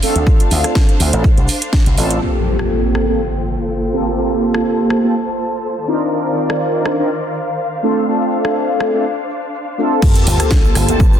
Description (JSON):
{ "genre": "filtered disco house", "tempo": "123 BPM", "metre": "4/4", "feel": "swing 54% on 16ths", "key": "G minor", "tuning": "A4 = 440 Hz", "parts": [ { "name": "mellow synth brass", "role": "accompaniment", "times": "0.0-11.0 s", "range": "A3 to Bb4", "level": "-17 LUFS", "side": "equal", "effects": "chorus, phaser, sidechain pumping, low-pass filter" }, { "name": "warm symphonic string section", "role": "sustained chords", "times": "0.0-11.2 s", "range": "Eb3 to A5", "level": "-22 LUFS", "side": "left 1 dB", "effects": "sidechain pumping, low-pass filter" }, { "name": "slap bass with an envelope filter", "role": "bass", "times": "0.0-2.2, 10.3-11.2 s", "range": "G1 to G2", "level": "-17 LUFS", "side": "equal", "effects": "sidechain pumping, low-pass filter" }, { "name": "house drum kit", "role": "drums", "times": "0.0-11.0 s", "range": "crash cymbal, hi-hat, rim click, snare drum", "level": "-24 LUFS", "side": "right 1 dB", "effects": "sidechain pumping on hats, sidechain pumping on cymbals" }, { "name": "tube shaker", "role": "percussion", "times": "0.0-11.2 s", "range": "none", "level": "-33 LUFS", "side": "right 6 dB", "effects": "none" }, { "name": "electronic kick drum", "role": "drums", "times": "0.3-1.8, 10.0-11.1 s", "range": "none", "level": "-12 LUFS", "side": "equal", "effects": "none" }, { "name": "impact and sub drop", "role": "sound effects", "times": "2.2-4.2, 10.1-11.2 s", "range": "none", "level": "-20 LUFS", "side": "equal", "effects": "none" } ], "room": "light reverb", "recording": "dense, heavily limited modern master", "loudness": "-13 LUFS", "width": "side -9 dB against mid", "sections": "0.0-2.2 A section; 2.2-10.0 B section; 10.0-11.2 C section", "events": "impact 2.2-4.2, 10.0-11.2; filter sweep 2.2-10.0; drop 10.0-11.2", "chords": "0.0 Dm7; 2.2 Gm11; 5.9 Cm11; 7.8 Dm7; 10.0 Gm11" }